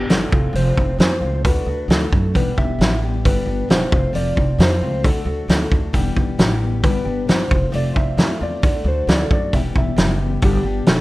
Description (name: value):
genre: folk rock and heartland rock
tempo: 134 BPM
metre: 4/4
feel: straight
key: unclear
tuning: A4 = 440 Hz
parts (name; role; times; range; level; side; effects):
- electric slide guitar; melody; 0.0-11.0 s; G4 to E5; -25 LUFS; equal; analog delay
- picked steel-string acoustic guitar; accompaniment; 0.0-11.0 s; E2 to G4; -26 LUFS; left 5 dB; none
- upright bass; bass; 0.0-11.0 s; E1 to F#2; -22 LUFS; equal; none
- loose indie drum kit; drums; 0.1-11.0 s; hi-hat, kick drum, snare drum; -17 LUFS; equal; none
room: small room ambience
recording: rough home demo mix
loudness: -16 LUFS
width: side -19 dB against mid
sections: 0.0-11.0 A section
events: none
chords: 0.3 F; 1.4 D; 2.3 Em; 3.2 G; 3.9 F; 5.0 D; 5.9 Em; 6.8 G; 7.5 F; 8.6 D; 9.5 Em; 10.4 G